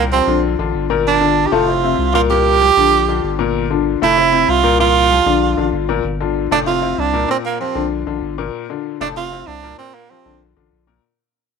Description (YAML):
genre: latin, salsa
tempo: 192 BPM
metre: 4/4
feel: straight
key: unclear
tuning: A4 = 444 Hz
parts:
  - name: bright tenor saxophone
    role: melody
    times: 0.0-10.4 s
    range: Bb3 to G4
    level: -15 LUFS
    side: right 8 dB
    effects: none
  - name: clear upright piano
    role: accompaniment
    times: 0.0-11.0 s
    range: A2 to E5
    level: -19 LUFS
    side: left 13 dB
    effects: none
  - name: saturated sub bass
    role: bass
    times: 0.0-11.0 s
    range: F1 to C2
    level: -22 LUFS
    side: left 1 dB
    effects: none
room: light reverb, small room ambience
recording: 1960s-style stereo with parts hard left and right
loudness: -13 LUFS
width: side -6 dB against mid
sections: 0.0-6.0 A section; 6.0-11.0 B section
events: fade-out 6.0-11.0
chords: 0.4 Bb6; 1.1 Gm7; 1.7 F5; 2.3 C7sus4; 2.9 Bb6; 3.5 Gm7; 4.2 F5; 4.8 C7sus4; 5.4 Bb6; 6.0 G5; 6.7 F5; 7.3 C7sus4; 7.9 Bb6; 8.5 Bbmaj7; 9.2 F5; 9.8 C7sus4; 10.4 Bb